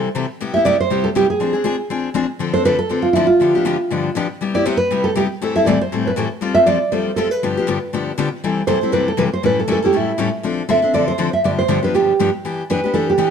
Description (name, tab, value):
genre	jazz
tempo	239 BPM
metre	4/4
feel	swing 57% on 8ths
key	C major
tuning	A4 = 440 Hz
part	nylon-string guitar	melody	0.0-13.3 s	E4 to E5	-17 LUFS	right 3 dB	none
part	picked steel-string acoustic guitar	accompaniment	0.0-13.3 s	G2 to A4	-19 LUFS	left 5 dB	none
room	moderate studio reverb, RT60 1.0 s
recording	dark, warm production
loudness	-15 LUFS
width	side -7 dB against mid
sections	0.4-8.4 A section; 8.4-13.3 B section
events	none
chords	0.4 Cmaj7; 1.4 Fm6; 2.4 Dm7; 3.4 G7; 4.4 Cmaj7; 5.4 Am7; 6.4 Fadd9; 7.4 G7; 8.4 C6; 9.4 A7; 10.4 Dm7; 11.4 G7; 12.4 Em7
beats	0.14 | 0.39 0.64 0.89 1.14 | 1.39 1.65 1.90 2.15 | 2.40 2.65 2.90 3.15 | 3.40 3.65 3.90 4.16 | 4.41 4.66 4.91 5.16 | 5.41 5.66 5.91 6.16 | 6.41 6.67 6.92 7.17 | 7.42 7.67 7.92 8.17 | 8.42 8.67 8.92 9.17 | 9.42 9.68 9.93 10.18 | 10.43 10.68 10.93 11.18 | 11.43 11.68 11.93 12.18 | 12.43 12.68 12.93 13.18